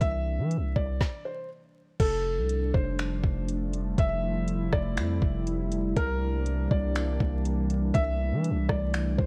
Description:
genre	hip hop, atmospheric cloud-rap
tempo	121 BPM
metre	4/4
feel	half-time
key	F major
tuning	A4 = 440 Hz
part	felt-muted upright piano	melody	0.0-9.3 s	A4 to E5	-35 LUFS	equal	slapback echo
part	warbly tape-like pad	sustained chords	0.0-9.3 s	C3 to E4	-35 LUFS	equal	chorus, built-in reverb, sidechain pumping
part	long sustained 808-style bass	bass	0.0-9.3 s	F1 to E3	-31 LUFS	equal	none
part	smooth R&B drum kit	drums	0.0-9.3 s	crash cymbal, finger snaps, hi-hat, kick drum, rim click, snare drum	-30 LUFS	equal	vintage 12-bit sampler grit
room	light reverb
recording	vinyl crackle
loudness	-28 LUFS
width	mono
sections	0.0-2.0 A section; 2.0-9.3 B section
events	stop 1.0-2.0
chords	0.0 C9; 2.0 F69; 6.0 C9

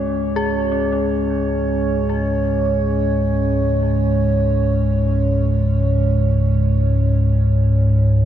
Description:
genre	dark ambient drone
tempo	free time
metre	none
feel	none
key	unclear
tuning	A4 = 441 Hz
part	dark analog pad	sustained chords	0.0-8.3 s	G#3 to C#5	-21 LUFS	right 2 dB	chorus
part	dark detuned synth bell	arpeggios	0.0-8.3 s	C#4 to G#4	-27 LUFS	left 6 dB	chorus, tape echo
part	deep rumbling drone	drone	0.0-8.3 s	C#2 to G#2	-17 LUFS	equal	built-in reverb
room	wet cathedral reverb, RT60 5.0 s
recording	none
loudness	-16 LUFS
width	side -10 dB against mid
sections	0.0-8.3 A section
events	fade-out on analog synth pad 0.0-8.3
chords	0.0 C#5

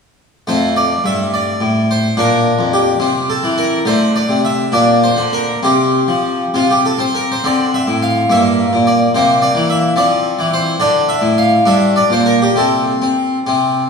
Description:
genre	classical, baroque-style suite movement for harpsichord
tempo	66-72 BPM (dotted quarters)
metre	6/8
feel	rubato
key	F major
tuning	A4 = 440 Hz
part	harpsichord	solo	0.5-13.9 s	F2 to F5	-12 LUFS	left 1 dB	none
room	wet concert hall reverb, RT60 2.4 s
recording	recorded in a church or concert hall, studio reverb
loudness	-12 LUFS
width	side -5 dB against mid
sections	0.5-13.9 A section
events	none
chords	0.5 F; 2.2 Bb; 3.0 C; 3.8 D5; 4.7 Bbadd9; 5.6 Csus4; 6.5 N.C.; 7.4 D5; 8.3 Gm; 9.1 C7; 10.0 F5; 10.8 D5; 11.7 Gm; 12.5 N.C.

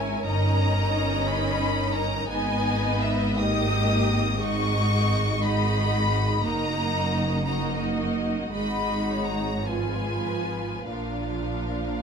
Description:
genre	classical, slow romantic movement for string orchestra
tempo	47-61 BPM (dotted quarters)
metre	6/8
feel	rubato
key	Eb minor from 4.4 s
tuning	A4 = 440 Hz
part	clear studio violin section	melody	0.0-12.0 s	E5 to D#6	-30 LUFS	left 3 dB	none
part	clear studio violin section	second line	0.0-12.0 s	F4 to D#5	-31 LUFS	left 2 dB	none
part	rich studio viola section	accompaniment	0.0-12.0 s	F3 to F4	-29 LUFS	right 2 dB	none
part	rich studio cello section	bass	0.0-12.0 s	Gb2 to Bb2	-30 LUFS	equal	none
part	rich studio double bass section	bass	0.0-12.0 s	Gb1 to Bb1	-29 LUFS	right 1 dB	none
room	moderate large studio reverb, RT60 1.3 s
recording	dark, warm production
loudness	-23 LUFS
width	side -6 dB against mid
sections	0.0-12.0 A section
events	none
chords	0.3 D#7/G; 2.3 G#m; 3.4 D#/G#; 4.4 Abm7; 6.4 Ebm/Gb; 8.5 Abm7; 9.7 Fdim/Ab; 10.9 Bb

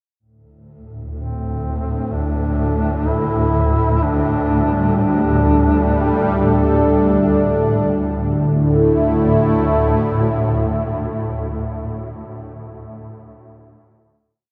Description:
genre	dark ambient drone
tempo	free time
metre	none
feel	none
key	unclear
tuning	A4 = 440 Hz
part	swarming drone	drone	1.0-11.4 s	D2 to A2	-21 LUFS	equal	built-in reverb
part	dark duduk	melody	1.2-6.9 s	C4 to E4	-24 LUFS	equal	tape echo
part	sweeping resonant pad	sustained chords	4.0-11.6 s	D3 to A4	-20 LUFS	equal	chorus
room	wet huge ambient reverb, RT60 8.5 s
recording	none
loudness	-17 LUFS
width	mono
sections	0.2-7.9 A section; 7.9-11.7 final chord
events	fade-in on duduk 0.2-7.9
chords	0.2 D5; 4.0 G5; 7.9 D5

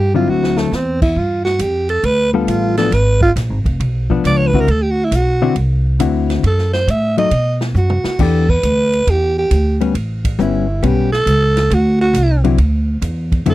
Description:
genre	jazz, small-group swing and bop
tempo	137 BPM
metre	4/4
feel	swing 68% on 8ths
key	D mixolydian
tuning	A4 = 438 Hz
part	growling alto saxophone	second line	0.0-13.5 s	A3 to E5	-17 LUFS	right 2 dB	none
part	upright bass	bass	0.0-13.5 s	E#1 to B2	-16 LUFS	equal	none
part	hollow-body jazz guitar	accompaniment	0.1-13.5 s	D3 to A4	-16 LUFS	left 7 dB	none
part	swinging big-band drum kit	drums	0.4-13.5 s	crash cymbal, hi-hat, kick drum, ride cymbal, snare drum, toms	-21 LUFS	equal	none
room	little or no reverb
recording	dry, close 1970s-style studio recording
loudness	-13 LUFS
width	side -16 dB against mid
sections	0.0-13.5 A section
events	alto saxophone solo 0.0-13.5; drum fill 0.3-0.7, 7.7-8.2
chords	0.3 D9; 1.2 G9; 2.9 G#dim7; 4.7 D9; 6.4 F#m; 7.3 B5; 8.2 Em7; 9.9 A9; 11.7 D9

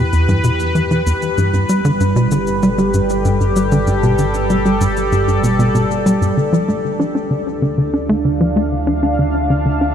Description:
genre	ambient, sequencer-driven space music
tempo	96 BPM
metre	4/4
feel	straight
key	unclear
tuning	A4 = 440 Hz
part	sweeping resonant pad	sustained chords	0.0-9.9 s	G3 to A5	-18 LUFS	equal	chorus
part	tight sequencer bass	riff	0.0-9.9 s	E2 to D4	-16 LUFS	equal	ping-pong delay
part	analog drone	bass	0.0-9.9 s	G1 to E2	-24 LUFS	equal	chorus
part	cabasa and congas	percussion	0.1-6.3 s	none	-34 LUFS	left 2 dB	ping-pong delay
room	wet huge ambient reverb, RT60 7.4 s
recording	dreamy mix soaked in reverb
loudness	-13 LUFS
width	side -8 dB against mid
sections	0.0-6.4 A section; 6.4-9.9 B section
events	none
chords	0.0 Em; 1.4 Gadd9; 6.4 Dmadd9

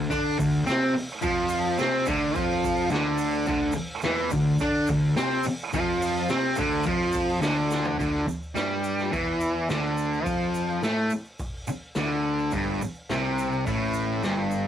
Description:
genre	garage rock duo or trio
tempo	106 BPM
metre	4/4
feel	straight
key	D minor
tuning	A4 = 441 Hz
part	fuzz guitar	riff	0.0-14.7 s	G2 to D4	-24 LUFS	equal	distortion, cassette tape
part	fuzz picked electric bass	bass	0.0-14.7 s	G1 to D3	-31 LUFS	equal	overdrive
part	raw garage drum kit	drums	0.1-14.4 s	hi-hat, kick drum, snare drum, toms	-34 LUFS	equal	cassette tape
part	egg shaker	percussion	0.1-14.6 s	none	-46 LUFS	right 9 dB	none
room	light reverb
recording	home recording on cassette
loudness	-23 LUFS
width	side -10 dB against mid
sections	0.0-8.0 A section; 8.0-14.7 B section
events	drum fill 7.7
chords	0.0 Dm; 12.5 G5

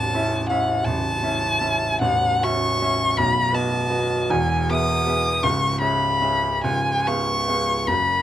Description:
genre	classical, romantic duo for violin and grand piano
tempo	45-56 BPM (dotted quarters)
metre	6/8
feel	rubato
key	unclear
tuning	A4 = 435 Hz
part	rich violin	melody	0.0-8.2 s	F#5 to D#6	-21 LUFS	left 1 dB	none
part	clear baby grand piano	accompaniment	0.0-8.2 s	A0 to E#5	-23 LUFS	right 1 dB	none
room	light reverb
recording	close, detailed microphones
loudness	-19 LUFS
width	side -12 dB against mid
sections	0.0-8.2 A section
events	none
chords	0.0 A; 2.0 F#m7/A; 3.2 B7; 4.3 E; 5.4 C#m7; 6.6 C#7

